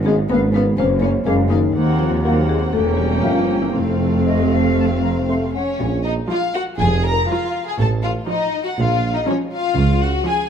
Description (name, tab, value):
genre	cinematic, playful, whimsical film cue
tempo	121 BPM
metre	4/4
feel	straight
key	Bb minor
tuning	A4 = 440 Hz
part	warm chamber violin section	second line	0.0-10.5 s	C4 to Bb4	-24 LUFS	left 2 dB	none
part	dark symphonic double bass section	bass	0.0-10.2 s	E1 to Eb2	-24 LUFS	right 2 dB	none
part	mellow tuba	bass	0.0-10.2 s	E1 to Eb2	-24 LUFS	right 4 dB	none
part	warm chamber cello section	bass	0.0-10.2 s	Eb2 to Db3	-22 LUFS	right 1 dB	none
part	dark chamber violin section	melody	0.1-10.5 s	Db5 to Bb5	-26 LUFS	left 4 dB	none
part	marimba with hard mallets	melody	0.1-5.5 s	C4 to Db5	-25 LUFS	left 7 dB	none
part	warm chamber viola section	accompaniment	0.1-10.5 s	F3 to F4	-24 LUFS	right 3 dB	none
part	mellow French horn section	sustained chords	0.1-5.5 s	C3 to Db4	-24 LUFS	left 5 dB	none
part	bright small flute group	second line	0.3-5.6 s	Eb5 to C6	-31 LUFS	left 3 dB	none
part	dark clarinet	second line	0.3-5.5 s	C4 to Db4	-28 LUFS	left 1 dB	none
part	mellow bassoon	accompaniment	0.3-5.5 s	A3 to Cb4	-29 LUFS	right 3 dB	none
room	wet recital hall reverb, RT60 1.6 s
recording	dark, warm production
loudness	-16 LUFS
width	side -8 dB against mid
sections	0.0-5.8 A section; 5.8-10.5 B section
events	none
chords	0.0 Db7/Ab; 0.8 Gbmaj7; 1.8 Cm7b5/Eb; 2.7 Edim7; 3.7 F; 5.8 Bb5; 7.8 F7/A; 8.8 Bbm; 9.8 Db